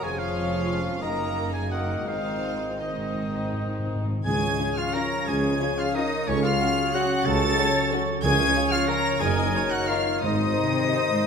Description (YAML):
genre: classical, orchestral ballroom waltz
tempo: 156-200 BPM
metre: 3/4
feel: rubato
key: Db major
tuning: A4 = 440 Hz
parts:
  - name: warm symphonic violin section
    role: melody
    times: 0.0-11.3 s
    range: Eb5 to Bb6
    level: -30 LUFS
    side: left 1 dB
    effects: none
  - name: bright clarinet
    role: second line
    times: 0.0-11.3 s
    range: Db4 to C5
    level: -33 LUFS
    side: left 2 dB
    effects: none
  - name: bright concert flute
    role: second line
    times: 0.0-11.3 s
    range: Db5 to Eb6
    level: -32 LUFS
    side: left 2 dB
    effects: none
  - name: bright oboe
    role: second line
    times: 0.0-11.3 s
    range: Db5 to Bb5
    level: -33 LUFS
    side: right 2 dB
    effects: none
  - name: dark chamber violin section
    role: second line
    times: 0.0-11.0 s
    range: Bb3 to C5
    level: -35 LUFS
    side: left 4 dB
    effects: none
  - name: dark symphonic viola section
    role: accompaniment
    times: 0.0-11.3 s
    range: Eb4 to Eb5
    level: -34 LUFS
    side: equal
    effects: none
  - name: warm bassoon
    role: accompaniment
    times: 0.0-4.1 s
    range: Eb3 to F3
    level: -35 LUFS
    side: right 2 dB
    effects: none
  - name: concert harp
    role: arpeggios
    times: 0.0-11.3 s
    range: F2 to Eb5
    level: -33 LUFS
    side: left 7 dB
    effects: none
  - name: dark studio cello section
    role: bass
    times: 0.0-11.3 s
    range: F2 to Db3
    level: -32 LUFS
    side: right 2 dB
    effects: none
  - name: warm symphonic double bass section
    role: bass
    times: 0.0-10.5 s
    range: F1 to Db2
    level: -32 LUFS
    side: right 4 dB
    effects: none
  - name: warm French horn section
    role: sustained chords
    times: 0.4-11.3 s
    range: Eb3 to Eb4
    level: -32 LUFS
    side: left 3 dB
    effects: none
  - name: timpani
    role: percussion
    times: 2.1-4.7, 8.2-10.7 s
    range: Ab2 to Db3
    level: -33 LUFS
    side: equal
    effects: none
  - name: dark trumpet section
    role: stabs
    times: 4.3-11.3 s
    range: Bb4 to Db5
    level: -31 LUFS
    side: right 2 dB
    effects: none
  - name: clear tuba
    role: bass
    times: 4.3-10.5 s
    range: Gb1 to Db2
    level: -34 LUFS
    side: right 6 dB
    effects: none
room: wet recital hall reverb, RT60 1.7 s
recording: none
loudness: -22 LUFS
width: side -6 dB against mid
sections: 0.0-4.3 A section; 4.3-11.3 B section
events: timpani fill 2.1-4.3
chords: 0.0 Db/F; 1.0 Ebm/Gb; 2.1 Ab; 4.3 Db; 6.3 Gbm/Db; 8.2 Db; 9.2 Ebm/Gb; 10.2 Ab